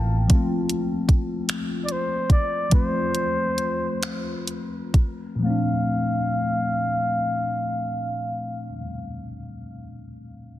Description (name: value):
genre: slow six-eight R&B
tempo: 41-51 BPM (dotted quarters)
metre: 6/8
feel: straight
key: Bb major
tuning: A4 = 440 Hz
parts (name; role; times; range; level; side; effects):
- tine electric piano; accompaniment; 0.0-10.6 s; Bb2 to A5; -27 LUFS; left 2 dB; analog chorus, low-pass filter
- smooth R&B drum kit; drums; 0.3-5.2 s; finger snaps, hi-hat, kick drum; -20 LUFS; equal; soft clipping on snare
- breathy flugelhorn; melody; 1.8-8.8 s; C5 to F5; -27 LUFS; equal; low-pass filter
room: light reverb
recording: dense, heavily limited modern master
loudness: -22 LUFS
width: side -14 dB against mid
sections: 0.0-5.4 A section; 5.4-8.4 B section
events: tine electric piano fill 0.0; filter sweep 0.0-5.4; slowing down 0.3-5.4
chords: 0.0 Bbmaj7sus2; 5.4 Bbmaj9